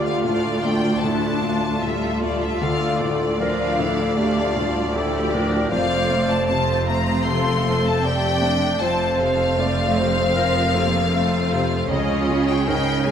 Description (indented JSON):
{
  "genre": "cinematic, emotional film score for orchestra",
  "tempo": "78 BPM",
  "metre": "4/4",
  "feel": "rubato",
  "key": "D minor",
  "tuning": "A4 = 440 Hz",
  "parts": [
    { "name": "mellow clarinet", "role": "second line", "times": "0.0-13.1 s", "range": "F4 to D5", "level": "-26 LUFS", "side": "equal", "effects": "none" },
    { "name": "warm symphonic violin section", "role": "second line", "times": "0.0-13.1 s", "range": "D4 to F5", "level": "-27 LUFS", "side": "left 1 dB", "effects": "none" },
    { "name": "dark baby grand piano", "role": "accompaniment", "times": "0.0-13.1 s", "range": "C#2 to C4", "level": "-27 LUFS", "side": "left 4 dB", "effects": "none" },
    { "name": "rich symphonic viola section", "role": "accompaniment", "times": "0.0-13.1 s", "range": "F3 to F4", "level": "-26 LUFS", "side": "right 2 dB", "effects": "none" },
    { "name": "rich symphonic cello section", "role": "bass", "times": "0.0-13.1 s", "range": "D2 to C#3", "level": "-26 LUFS", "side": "right 2 dB", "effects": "none" },
    { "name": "rich symphonic double bass section", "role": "bass", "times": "0.0-13.1 s", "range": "F1 to D2", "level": "-28 LUFS", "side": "right 3 dB", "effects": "none" },
    { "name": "warm symphonic violin section", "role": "melody", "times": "0.1-13.1 s", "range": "D5 to C6", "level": "-25 LUFS", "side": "left 4 dB", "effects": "none" }
  ],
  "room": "wet scoring stage reverb, RT60 2.0 s",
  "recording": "none",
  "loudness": "-18 LUFS",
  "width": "side -8 dB against mid",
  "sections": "0.0-13.1 A section",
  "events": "none",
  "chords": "0.0 Dmadd9; 5.7 F; 11.9 C#sus2"
}